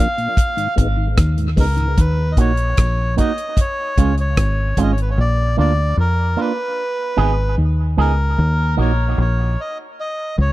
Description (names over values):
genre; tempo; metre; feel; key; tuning
dub reggae; 75 BPM; 4/4; straight; unclear; A4 = 440 Hz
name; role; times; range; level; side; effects
melodica; melody; 0.0-10.5 s; Bb4 to F5; -23 LUFS; equal; dub echo
mellow tonewheel organ; accompaniment; 0.0-1.9 s; Ab2 to Eb4; -26 LUFS; left 1 dB; chorus vibrato, slow rotary speaker, dub echo
damped 70s drum kit; drums; 0.2-5.2 s; hi-hat, kick drum, rim click; -17 LUFS; equal; none
deep dub fingered electric bass; bass; 0.8-10.5 s; Ab1 to F2; -16 LUFS; equal; tube saturation
electric guitar with an envelope filter; accompaniment; 2.4-8.9 s; Ab3 to Ab4; -24 LUFS; right 6 dB; dub echo
room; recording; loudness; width
small room ambience; dry, close 1970s-style studio recording; -15 LUFS; side -17 dB against mid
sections
0.0-2.0 A section; 2.0-10.5 B section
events
break 0.0-2.0; part muted 5.2-10.5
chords
0.4 Abm; 2.0 Ebm; 3.6 Db; 5.2 Bb; 6.8 Abm; 8.4 Eb5; 10.0 Db5